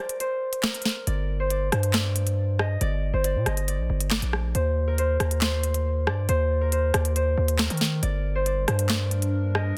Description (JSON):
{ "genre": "hip hop, drill", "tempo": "138 BPM", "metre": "4/4", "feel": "half-time", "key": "G minor", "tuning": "A4 = 440 Hz", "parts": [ { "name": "Celtic harp", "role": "melody", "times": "0.0-9.8 s", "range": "Bb4 to Eb5", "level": "-31 LUFS", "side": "equal", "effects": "low-pass filter, tape echo" }, { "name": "drill drum kit", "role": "drums", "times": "0.1-9.7 s", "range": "handclaps, hi-hat, rim click, snare drum", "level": "-29 LUFS", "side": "equal", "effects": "soft clipping on snare" }, { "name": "distorted 808-style bass", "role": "bass", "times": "1.1-9.7 s", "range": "G1 to Eb3", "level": "-27 LUFS", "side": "equal", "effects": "distortion" }, { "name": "warbly tape-like pad", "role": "sustained chords", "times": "8.6-9.8 s", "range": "G3 to Bb4", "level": "-37 LUFS", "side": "equal", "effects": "chorus, built-in reverb, phaser" } ], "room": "little or no reverb", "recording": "dense, heavily limited modern master", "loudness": "-25 LUFS", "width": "mono", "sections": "0.0-9.8 A section", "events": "break 0.0-1.1", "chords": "0.0 N.C.; 1.1 Gm; 4.5 Eb5; 8.0 Gm" }